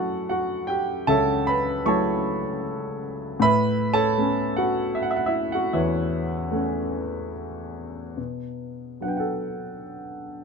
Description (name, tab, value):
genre	classical, lyrical solo piano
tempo	76 BPM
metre	3/4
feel	uneven beats, rubato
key	unclear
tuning	A4 = 439 Hz
part	warm grand piano	solo	0.0-10.4 s	C#2 to C#6	-23 LUFS	equal	none
room	light reverb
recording	close, detailed microphones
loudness	-22 LUFS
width	side -5 dB against mid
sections	0.0-8.2 A section; 8.2-10.4 B section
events	none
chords	0.0 F#m7; 3.4 Aadd9; 8.2 Bm